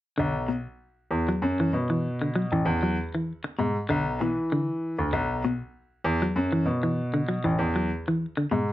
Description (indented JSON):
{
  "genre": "afrobeat",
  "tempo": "97 BPM",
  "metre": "4/4",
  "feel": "swing 55% on 16ths",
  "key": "B dorian",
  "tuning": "A4 = 438 Hz",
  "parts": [
    { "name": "semi-hollow electric guitar", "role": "arpeggios", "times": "0.2-8.7 s", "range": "B2 to F#3", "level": "-27 LUFS", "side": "left 1 dB", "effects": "none" },
    { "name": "clear baby grand piano", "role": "bass", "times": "0.2-8.7 s", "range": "A1 to E3", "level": "-26 LUFS", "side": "equal", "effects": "none" }
  ],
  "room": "moderate studio reverb, RT60 0.5 s",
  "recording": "none",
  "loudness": "-24 LUFS",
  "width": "side -14 dB against mid",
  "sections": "0.2-8.7 A section",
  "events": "none",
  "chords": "0.2 B5; 2.7 E5; 5.1 B5; 7.6 E5",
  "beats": "| 0.19 0.81 1.43 2.05 | 2.67 3.28 3.90 4.52 | 5.14 5.75 6.37 6.99 | 7.60 8.22"
}